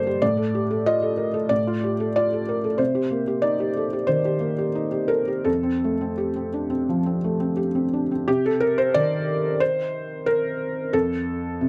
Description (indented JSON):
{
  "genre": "neoclassical minimalist piano",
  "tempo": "83-94 BPM",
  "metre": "4/4",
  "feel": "rubato",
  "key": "C dorian",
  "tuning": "A4 = 440 Hz",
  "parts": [
    { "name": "felt-muted upright piano", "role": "solo", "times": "0.0-11.7 s", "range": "F2 to Eb5", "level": "-23 LUFS", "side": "equal", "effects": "none" }
  ],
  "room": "light reverb",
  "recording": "dark, warm production",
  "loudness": "-23 LUFS",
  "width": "mono",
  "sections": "0.0-8.3 A section; 8.3-11.7 B section",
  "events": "none",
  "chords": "0.2 Fadd9/A; 2.8 Cm7; 5.5 Fadd9; 8.3 Cmadd9; 10.9 F"
}